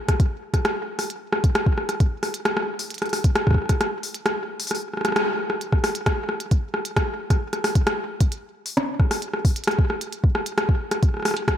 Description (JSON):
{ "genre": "IDM", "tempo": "133 BPM", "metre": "4/4", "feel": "straight", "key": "none", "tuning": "none", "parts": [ { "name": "electronic kick drum", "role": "drums", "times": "0.1-11.6 s", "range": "none", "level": "-19 LUFS", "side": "equal", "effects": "overdrive" }, { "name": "glitchy drum kit", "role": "drums", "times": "0.1-11.6 s", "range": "hi-hat, rim click", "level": "-24 LUFS", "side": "equal", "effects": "overdrive, tape echo" } ], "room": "moderate echo chamber reverb, RT60 1.6 s", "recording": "echo-heavy mix", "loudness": "-21 LUFS", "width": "side -10 dB against mid", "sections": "0.0-5.6 A section; 5.6-11.6 A section", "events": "break 3.8-5.6; band accent 5.2", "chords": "none", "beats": "| 0.20 0.65 1.10 1.55 | 2.00 2.45 2.90 3.36 | 3.81 4.26 4.71 5.16 | 5.61 6.06 6.51 6.96 | 7.42 7.87 8.32 8.77 | 9.22 9.67 10.12 10.57 | 11.03 11.48" }